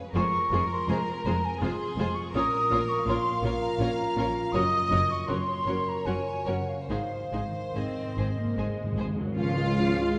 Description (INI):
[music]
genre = classical, slow romantic movement for symphony orchestra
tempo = 66-84 BPM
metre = 3/4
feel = rubato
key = Db major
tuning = A4 = 441 Hz
[part]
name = rich studio violin section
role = melody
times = 0.0-9.0 s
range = Ab4 to F5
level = -40 LUFS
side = equal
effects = none
[part]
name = concert harp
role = arpeggios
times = 0.0-10.2 s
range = Gb2 to G#4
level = -37 LUFS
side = equal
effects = none
[part]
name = hollow small flute group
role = second line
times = 0.1-10.2 s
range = Eb5 to Eb6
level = -32 LUFS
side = equal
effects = none
[part]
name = rich studio violin section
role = second line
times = 0.1-10.2 s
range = Ab4 to F5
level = -42 LUFS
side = equal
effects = none
[part]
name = rich studio cello section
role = bass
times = 0.1-10.2 s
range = F2 to F4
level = -36 LUFS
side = equal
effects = none
[part]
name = rich studio double bass section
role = bass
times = 0.1-10.1 s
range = F1 to Db2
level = -36 LUFS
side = equal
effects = none
[part]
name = rich studio viola section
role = accompaniment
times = 0.2-10.2 s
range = F3 to Gb4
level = -37 LUFS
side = equal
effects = none
[part]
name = timpani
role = percussion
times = 6.9-9.3 s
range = Ab2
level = -36 LUFS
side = equal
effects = none
[part]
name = warm French horn section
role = sustained chords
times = 9.3-10.2 s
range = Ab3 to Db4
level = -36 LUFS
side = equal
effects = none
[sound]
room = wet scoring stage reverb, RT60 1.5 s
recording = nothing above 10.5 kHz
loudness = -28 LUFS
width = mono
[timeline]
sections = 0.0-9.4 A section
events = timpani fill 6.9-9.4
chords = 0.1 Fm; 2.3 Bbm; 4.5 Gb; 6.9 Ab; 9.4 Db